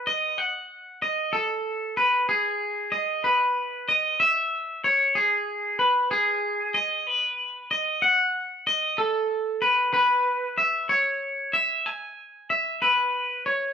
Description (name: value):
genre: rock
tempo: 63 BPM (dotted quarters)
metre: 6/8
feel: straight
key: unclear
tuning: A4 = 439 Hz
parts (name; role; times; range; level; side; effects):
- twangy electric guitar; solo; 0.0-13.7 s; G#4 to G#5; -22 LUFS; equal; none
room: moderate large studio reverb, RT60 1.1 s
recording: band playing live in one room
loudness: -22 LUFS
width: side -8 dB against mid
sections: 0.0-13.7 A section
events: none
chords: none